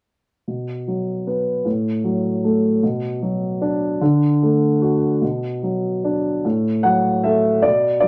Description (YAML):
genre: classical, lyrical solo piano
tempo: 50 BPM (dotted quarters)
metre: 6/8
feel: rubato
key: B minor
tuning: A4 = 441 Hz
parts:
  - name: dark concert grand piano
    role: solo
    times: 0.5-8.1 s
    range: A2 to F#5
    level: -19 LUFS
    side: equal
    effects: none
room: moderate studio reverb, RT60 0.6 s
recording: none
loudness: -20 LUFS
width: mono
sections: 0.5-5.2 A section; 5.2-8.1 B section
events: none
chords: 0.5 B5; 1.7 F#m/A; 2.8 Bm; 4.0 D; 5.2 Bm; 6.4 F#m/A